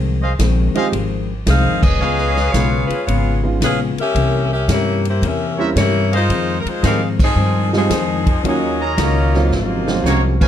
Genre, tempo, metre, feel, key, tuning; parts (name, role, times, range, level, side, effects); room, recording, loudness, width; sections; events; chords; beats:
jazz, big band swing; 112 BPM; 4/4; swing 67% on 8ths; F minor; A4 = 440 Hz
vintage hollow-body jazz guitar; accompaniment; 0.0-10.4 s; F2 to Gb4; -24 LUFS; left 6 dB
upright bass; bass; 0.0-10.5 s; F1 to Ab2; -18 LUFS; equal
warm trumpet section; stabs; 0.2-10.5 s; Ab4 to Bb5; -24 LUFS; right 2 dB
swinging big-band drum kit; drums; 0.4-10.5 s; crash cymbal, hi-hat, kick drum, ride cymbal, snare drum; -22 LUFS; equal
warm baby grand piano; accompaniment; 0.7-10.0 s; Gb3 to G4; -22 LUFS; right 5 dB
edgy saxophone section; melody; 1.5-10.4 s; F3 to F5; -20 LUFS; left 2 dB
clear trombone section; second line; 9.5-10.5 s; Gb2 to Db4; -22 LUFS; right 5 dB
warm trumpet section; melody; 10.1-10.5 s; Bb3 to Db5; -22 LUFS; right 2 dB
light reverb; dark, warm production; -14 LUFS; side -10 dB against mid
0.0-10.5 A section
band accent 1.7, 7.1, 10.3; drum fill 9.5-10.5
0.0 Fm7; 2.0 Db7; 4.2 C7b9; 6.3 Fm7; 8.4 Ebm7; 9.5 Ab13
0.39 0.93 1.47 | 2.00 2.54 3.08 3.61 | 4.15 4.69 5.22 5.76 | 6.30 6.83 7.37 7.91 | 8.44 8.98 9.51 10.05